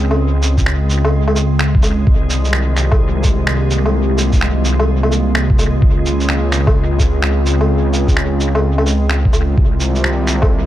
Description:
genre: future garage.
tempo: 128 BPM.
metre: 4/4.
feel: swing 63% on 16ths.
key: unclear.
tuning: A4 = 440 Hz.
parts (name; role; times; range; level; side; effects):
warbly tape-like pad; sustained chords; 0.0-10.7 s; Db3 to Ab4; -21 LUFS; right 1 dB; chorus, built-in reverb, sidechain pumping.
swelling detuned saw bass; bass; 0.0-10.7 s; C2 to Db2; -15 LUFS; equal; sidechain pumping.
backwards swelling texture; texture; 0.0-10.7 s; Ab3; -27 LUFS; left 1 dB; built-in reverb.
electronic woodblock, shaker and finger snaps; drums; 0.1-10.5 s; none; -20 LUFS; equal; analog delay.
electronic kick drum; drums; 0.6-10.5 s; none; -14 LUFS; equal; none.
room: little or no reverb.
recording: echo-heavy mix.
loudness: -12 LUFS.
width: side -13 dB against mid.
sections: 0.0-10.7 A section.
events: none.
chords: 0.0 Dbmaj7; 2.1 Fm11/C; 5.8 Dbmaj7; 9.6 Fm11/C.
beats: | 0.20 0.67 1.14 1.60 | 2.07 2.54 3.01 3.48 | 3.95 4.42 4.89 5.35 | 5.82 6.29 6.76 7.23 | 7.70 8.17 8.64 9.10 | 9.57 10.04 10.51.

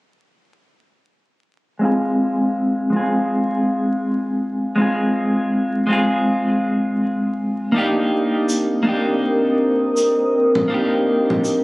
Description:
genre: trip hop.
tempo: 81 BPM.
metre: 4/4.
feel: swing 59% on 16ths.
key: F dorian.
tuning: A4 = 440 Hz.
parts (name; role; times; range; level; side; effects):
clean electric guitar; accompaniment; 1.8-11.6 s; Ab3 to Ab4; -18 LUFS; equal; harmonic tremolo, low-pass filter, tape echo.
deep dark ambient pad; sustained chords; 8.6-11.6 s; C4 to Eb6; -18 LUFS; equal; chorus, built-in reverb, vintage 12-bit sampler grit.
tube shaker and congas; percussion; 8.5-11.6 s; none; -23 LUFS; equal; none.
room: light reverb, studio ambience.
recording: recorded on a phone in the room, club reverb, vinyl crackle.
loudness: -16 LUFS.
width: side -21 dB against mid.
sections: 1.8-11.6 A section.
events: filter sweep on clean electric guitar 1.8-11.6.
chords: 1.8 Fm; 7.7 Cm7.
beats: | 1.82 2.56 3.30 4.04 | 4.79 5.53 6.27 7.01 | 7.75 8.49 9.23 9.97 | 10.71 11.45.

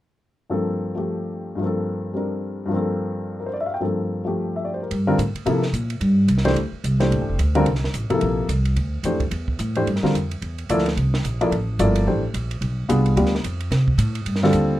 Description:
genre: modal jazz.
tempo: 218 BPM.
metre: 4/4.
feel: swing 59% on 8ths.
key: G dorian.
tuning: A4 = 440 Hz.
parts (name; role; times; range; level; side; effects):
warm baby grand piano; accompaniment; 0.5-14.8 s; G2 to G5; -21 LUFS; left 1 dB; none.
upright bass; bass; 4.9-14.8 s; F1 to C3; -21 LUFS; equal; none.
compact cocktail drum kit; drums; 4.9-14.6 s; hi-hat, kick drum, ride cymbal, snare drum; -31 LUFS; right 2 dB; none.
room: moderate studio ambience, RT60 0.4 s.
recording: dark, warm production.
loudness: -20 LUFS.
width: side -14 dB against mid.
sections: 0.5-4.9 A section; 4.9-13.7 B section; 13.7-14.8 C section.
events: none.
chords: 0.5 Gm11; 9.3 Am; 12.6 G7b9; 13.7 Cm69.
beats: | 0.50 0.77 1.05 1.32 | 1.60 1.88 2.15 2.43 | 2.71 2.98 3.26 3.53 | 3.81 4.08 4.36 4.64 | 4.91 5.19 5.46 5.74 | 6.01 6.29 6.57 6.84 | 7.12 7.39 7.67 7.94 | 8.22 8.49 8.77 9.04 | 9.32 9.59 9.87 10.14 | 10.42 10.69 10.97 11.24 | 11.52 11.79 12.07 12.34 | 12.62 12.89 13.17 13.44 | 13.71 13.99 14.26 14.54.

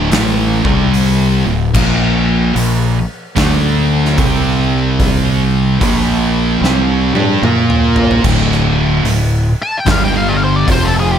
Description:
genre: stoner and doom metal.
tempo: 74 BPM.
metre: 4/4.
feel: swing 65% on 8ths.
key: unclear.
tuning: A4 = 440 Hz.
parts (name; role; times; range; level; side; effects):
heavy high-gain guitar; riff; 0.0-11.2 s; D2 to Bb4; -21 LUFS; equal; distortion.
thick fuzz guitar; riff; 0.0-11.2 s; D2 to Bb4; -18 LUFS; left 8 dB; distortion.
thick fuzz guitar; riff; 0.0-11.2 s; D2 to Bb4; -16 LUFS; right 8 dB; distortion.
growling fingered electric bass; bass; 0.0-11.2 s; D1 to Bb2; -17 LUFS; equal; overdrive.
oversized low-tuned drum kit; drums; 0.1-10.9 s; crash cymbal, hi-hat, kick drum, snare drum, toms; -18 LUFS; equal; none.
octave-fuzz lead guitar; melody; 9.6-11.2 s; G4 to A5; -16 LUFS; left 2 dB; wah, distortion.
room: light reverb, studio reverb.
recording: none.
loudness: -11 LUFS.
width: side -8 dB against mid.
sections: 0.0-8.2 A section; 8.2-11.2 B section.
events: drum fill 6.6-8.2; lead electric guitar solo 8.2-11.2.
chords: 0.0 D5; 0.5 C5; 1.3 D5; 1.7 Bb5; 3.4 D5; 4.2 C5; 5.8 Bb5; 8.2 D5; 9.9 G5; 10.7 F5.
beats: 0.12 0.94 | 1.75 2.56 3.37 4.18 | 4.99 5.80 6.62 7.43 | 8.24 9.05 9.87 10.68.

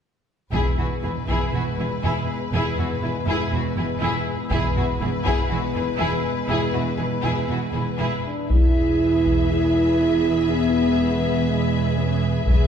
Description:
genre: cinematic, epic orchestral film score.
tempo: 121 BPM.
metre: 4/4.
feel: straight.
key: unclear.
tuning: A4 = 440 Hz.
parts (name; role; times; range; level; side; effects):
warm symphonic violin section; melody; 0.5-12.7 s; B4 to E5; -30 LUFS; left 7 dB; none.
rich symphonic violin section; second line; 0.5-12.7 s; F#4 to B4; -30 LUFS; left 4 dB; none.
rich symphonic viola section; accompaniment; 0.5-12.7 s; E4 to G#4; -30 LUFS; equal; none.
mellow French horn section; sustained chords; 0.5-12.7 s; G#3 to G#4; -24 LUFS; equal; none.
rich studio double bass section; bass; 0.5-12.7 s; E1; -28 LUFS; right 4 dB; none.
warm chamber cello section; bass; 0.5-12.7 s; E2; -27 LUFS; right 2 dB; none.
taiko ensemble; drums; 0.5-1.5, 4.5-5.5, 8.5-12.7 s; none; -22 LUFS; left 1 dB; none.
room: wet concert hall reverb, RT60 1.9 s.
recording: heard from further back in the room.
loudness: -19 LUFS.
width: side -8 dB against mid.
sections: 0.5-8.5 A section; 8.5-12.7 B section.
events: none.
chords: 0.5 E.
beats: | 0.53 1.03 1.53 2.03 | 2.52 3.02 3.52 4.01 | 4.51 5.00 5.50 6.00 | 6.49 6.99 7.49 8.00 | 8.50 9.00 9.50 10.00 | 10.49 10.98 11.48 11.97 | 12.46.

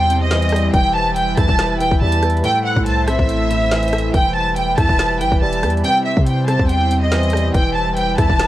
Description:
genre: hip hop, drill.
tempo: 141 BPM.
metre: 4/4.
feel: half-time.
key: E harmonic minor.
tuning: A4 = 440 Hz.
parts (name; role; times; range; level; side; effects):
rich studio violin section; melody; 0.0-8.5 s; D#5 to A5; -18 LUFS; right 1 dB; none.
dark baby grand piano; accompaniment; 0.0-8.5 s; A2 to E4; -23 LUFS; equal; cassette tape.
airy breathy pad; sustained chords; 0.0-8.5 s; G3 to C5; -24 LUFS; equal; chorus, cassette tape.
long sustained 808-style bass; bass; 0.0-8.5 s; D#1 to C3; -20 LUFS; equal; none.
drill drum kit; drums; 0.1-8.5 s; hi-hat, kick drum, rim click, snare drum; -20 LUFS; equal; cassette tape.
room: digital ambience.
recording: home recording on cassette.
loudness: -14 LUFS.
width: side -14 dB against mid.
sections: 0.0-8.5 A section.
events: none.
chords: 0.0 C; 0.7 Em; 2.4 Am; 4.1 Em; 5.8 C; 7.5 Em.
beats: 0.31 | 0.73 1.16 1.59 2.01 | 2.44 2.86 3.29 3.71 | 4.14 4.57 4.99 5.42 | 5.84 6.27 6.69 7.12 | 7.54 7.97 8.39.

